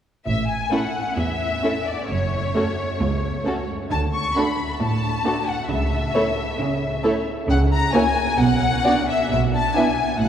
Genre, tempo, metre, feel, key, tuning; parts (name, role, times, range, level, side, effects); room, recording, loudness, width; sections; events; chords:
quick classical-period movement for string orchestra; 133 BPM; 4/4; rubato; A major; A4 = 440 Hz
warm studio violin section; melody; 0.3-10.3 s; C#5 to C#6; -24 LUFS; left 4 dB
clear studio cello section; bass; 0.3-10.3 s; C#2 to D3; -26 LUFS; right 2 dB
dark studio double bass section; bass; 0.3-10.3 s; F#1 to D2; -27 LUFS; right 2 dB
warm studio violin section; second line; 0.7-9.8 s; E4 to E5; -28 LUFS; left 1 dB
dark studio viola section; accompaniment; 0.7-9.8 s; A3 to E4; -26 LUFS; right 2 dB
wet cathedral reverb, RT60 6.4 s; recorded in a church or concert hall; -19 LUFS; side -9 dB against mid
0.3-10.3 A section
0.3 A5; 2.1 F#5; 3.9 D; 5.7 A/C# (rootless); 7.5 F#/C# (rootless); 8.4 B5